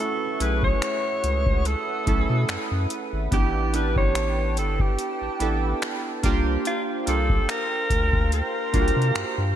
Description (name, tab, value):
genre	contemporary R&B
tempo	72 BPM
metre	4/4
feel	swing 54% on 16ths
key	unclear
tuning	A4 = 436 Hz
part	raspy alto saxophone	melody	0.0-9.5 s	F4 to C#5	-27 LUFS	equal	digital delay
part	warm analog keys	accompaniment	0.0-9.6 s	A3 to A4	-29 LUFS	right 4 dB	chorus
part	chorused pulse-width pad	sustained chords	0.0-9.6 s	B4 to Eb6	-34 LUFS	right 1 dB	sidechain pumping
part	downlifter	sound effects	0.0-3.3 s	none	-50 LUFS	equal	none
part	saturated sub bass	bass	0.4-9.5 s	G1 to C3	-25 LUFS	equal	none
part	booming analog drum machine	drums	0.4-9.4 s	finger snaps, hi-hat, kick drum	-25 LUFS	equal	gated reverb
room	light reverb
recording	bright 1980s-style digital production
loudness	-21 LUFS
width	side -10 dB against mid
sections	0.0-9.6 A section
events	none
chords	0.0 B9sus4; 3.3 A9sus4; 6.2 C9sus4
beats	0.82 1.65 2.49 | 3.32 4.15 4.99 5.82 | 6.65 7.49 8.32 9.15